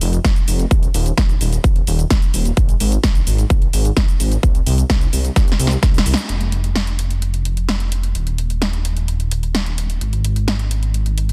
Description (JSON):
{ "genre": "EDM, festival progressive house", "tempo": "129 BPM", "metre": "4/4", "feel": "straight", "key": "F minor", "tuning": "A4 = 440 Hz", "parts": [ { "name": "detuned saw bass", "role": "bass", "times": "0.0-11.3 s", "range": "Eb1 to C2", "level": "-21 LUFS", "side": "equal", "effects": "chorus, sidechain pumping" }, { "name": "big-room dance drum kit", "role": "drums", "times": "0.0-11.3 s", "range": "hi-hat, shaker, snare drum", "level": "-25 LUFS", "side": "equal", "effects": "none" }, { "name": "electronic kick drum", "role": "drums", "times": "0.2-5.9 s", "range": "none", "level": "-17 LUFS", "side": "equal", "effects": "none" } ], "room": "digital ambience", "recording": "dense, heavily limited modern master", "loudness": "-18 LUFS", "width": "mono", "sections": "0.0-6.3 A section; 6.3-11.3 B section", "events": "drop 0.0-6.3; drum fill 5.4-6.3; band accent 6.1", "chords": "none", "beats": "0.24 | 0.71 1.18 1.64 2.11 | 2.57 3.04 3.50 3.97 | 4.43 4.90 5.36 5.83 | 6.29 6.76 7.22 7.69 | 8.15 8.62 9.08 9.55 | 10.01 10.48 10.94" }